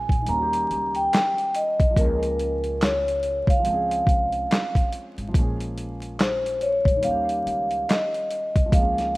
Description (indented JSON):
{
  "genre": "lo-fi hip hop",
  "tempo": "71 BPM",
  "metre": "4/4",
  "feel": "swing 59% on 16ths",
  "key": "unclear",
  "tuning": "A4 = 442 Hz",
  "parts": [
    { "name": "vibraphone with soft mallets", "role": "melody", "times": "0.0-9.2 s", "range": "Bb4 to Bb5", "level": "-23 LUFS", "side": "equal", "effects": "low-pass filter" },
    { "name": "felt-muted upright piano", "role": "accompaniment", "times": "0.0-9.2 s", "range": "Eb3 to Ab4", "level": "-33 LUFS", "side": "equal", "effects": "cassette tape, low-pass filter" },
    { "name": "upright bass", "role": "bass", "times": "0.0-9.2 s", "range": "Ab1 to Eb2", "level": "-33 LUFS", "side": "equal", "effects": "none" },
    { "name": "boom bap sampler-style drum kit", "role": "drums", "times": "0.1-9.2 s", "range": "handclaps, hi-hat, kick drum, snare drum", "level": "-22 LUFS", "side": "equal", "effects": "none" }
  ],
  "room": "light reverb, small room ambience",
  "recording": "rough home demo mix, vinyl crackle",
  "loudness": "-20 LUFS",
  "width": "side -20 dB against mid",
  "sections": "0.0-9.2 A section",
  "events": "none",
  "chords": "0.3 Eb7; 2.0 Bbm7/Db; 3.7 Dbmaj7; 5.3 Bbm7; 7.0 Eb7",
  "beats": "0.27 1.12 | 1.96 2.81 3.65 4.50 | 5.34 6.19 7.03 7.88 | 8.72"
}